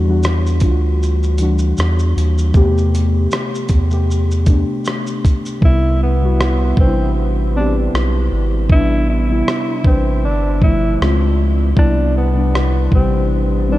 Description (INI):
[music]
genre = lo-fi hip hop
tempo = 78 BPM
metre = 4/4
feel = swing 56% on 16ths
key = unclear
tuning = A4 = 440 Hz
[part]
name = muted felt-like synth keys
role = accompaniment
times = 0.0-13.8 s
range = B2 to B4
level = -19 LUFS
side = left 1 dB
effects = chorus, low-pass filter
[part]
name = round analog bass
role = bass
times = 0.0-13.8 s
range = G1 to E2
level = -16 LUFS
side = equal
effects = none
[part]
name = dusty soul sampler-style drum kit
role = drums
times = 0.2-13.1 s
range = hi-hat, kick drum, rim click, shaker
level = -17 LUFS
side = equal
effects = none
[part]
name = breathy tenor saxophone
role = melody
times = 5.6-13.8 s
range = B3 to E4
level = -22 LUFS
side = equal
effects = low-pass filter, ping-pong delay
[sound]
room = light reverb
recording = cassette tape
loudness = -13 LUFS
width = side -16 dB against mid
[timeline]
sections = 0.0-5.6 A section; 5.6-13.8 B section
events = hi-hats muted 5.6-13.8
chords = 0.0 Em9; 2.5 Am9/E; 5.6 Cmaj7; 8.7 Am11; 10.2 G13; 11.0 C#maj7; 11.8 Cmaj7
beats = 0.24 1.01 1.77 | 2.54 3.31 4.08 4.85 | 5.62 6.39 7.16 7.93 | 8.70 9.47 10.24 11.01 | 11.78 12.54 13.31